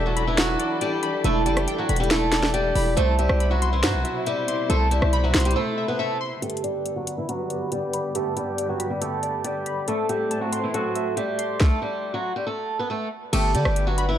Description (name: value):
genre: hip hop, trap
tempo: 139 BPM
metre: 4/4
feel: half-time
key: G major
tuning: A4 = 438 Hz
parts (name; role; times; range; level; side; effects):
- picked swing-style acoustic guitar; melody; 0.0-14.2 s; E3 to B4; -26 LUFS; equal; low-pass filter, tape echo
- glassy digital keys; accompaniment; 0.0-14.2 s; E4 to C6; -28 LUFS; right 1 dB; chorus, phaser, low-pass filter
- dark studio string section; sustained chords; 0.0-14.2 s; G2 to B4; -32 LUFS; left 2 dB; low-pass filter
- distorted 808-style bass; bass; 0.0-5.6, 13.3-14.2 s; E1 to D3; -23 LUFS; equal; distortion
- trap drum kit; drums; 0.2-14.1 s; crash cymbal, hi-hat, kick drum, rim click, snare drum; -25 LUFS; equal; none
room: light reverb, digital ambience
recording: dark, warm production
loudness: -21 LUFS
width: side -10 dB against mid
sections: 0.0-6.4 A section; 6.4-13.3 B section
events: break 5.6-6.4; filter sweep 6.4-13.3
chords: 0.0 Em7; 3.0 Cmaj7; 6.4 Gmaj7; 9.9 Am7; 13.3 Gmaj7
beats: 0.38 0.81 | 1.24 1.68 2.11 2.54 | 2.97 3.40 3.83 4.27 | 4.70 5.13 5.56 5.99 | 6.42 6.86 7.29 7.72 | 8.15 8.58 9.01 9.45 | 9.88 10.31 10.74 11.17 | 11.60 12.04 12.47 12.90 | 13.33 13.76